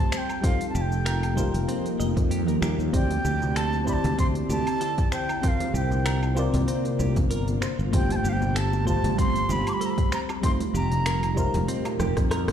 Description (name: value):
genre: sunset chillout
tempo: 96 BPM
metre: 4/4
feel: swing 54% on 16ths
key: unclear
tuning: A4 = 440 Hz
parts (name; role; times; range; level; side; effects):
- wooden flute; melody; 0.0-11.7 s; F5 to D6; -30 LUFS; equal; digital delay
- mellow FM electric piano; accompaniment; 0.0-12.5 s; G3 to D5; -30 LUFS; moving between left 5 dB and right 3 dB; chorus, auto-pan, tape echo
- ethereal airy pad; sustained chords; 0.0-12.5 s; Bb2 to G4; -31 LUFS; equal; ensemble chorus, built-in reverb, phaser
- twelve-string electric guitar; arpeggios; 0.1-12.5 s; C4 to Eb5; -36 LUFS; right 2 dB; spring reverb, tape echo
- smooth R&B drum kit; drums; 0.1-12.5 s; cabasa, finger snaps, hi-hat, rim click, woodblock; -34 LUFS; equal; none
- electronic kick drum; drums; 0.4-12.3 s; none; -25 LUFS; equal; none
- sustaining fretless electric bass; bass; 0.7-12.5 s; F1 to F2; -26 LUFS; equal; none
- bongos and congas; percussion; 2.9-12.4 s; none; -34 LUFS; equal; none
room: light reverb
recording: played on a big sound system in a bare room, large studio reverb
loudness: -22 LUFS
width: side -9 dB against mid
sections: 0.0-12.5 A section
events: drum fill 12.0-12.5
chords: 0.1 F9sus4; 2.9 D9sus4; 5.4 C9sus4; 7.6 G9sus4; 10.1 F9sus4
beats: | 0.43 1.06 1.69 2.31 | 2.94 3.56 4.18 4.81 | 5.43 6.06 6.68 7.31 | 7.93 8.56 9.19 9.81 | 10.44 11.06 11.69 12.31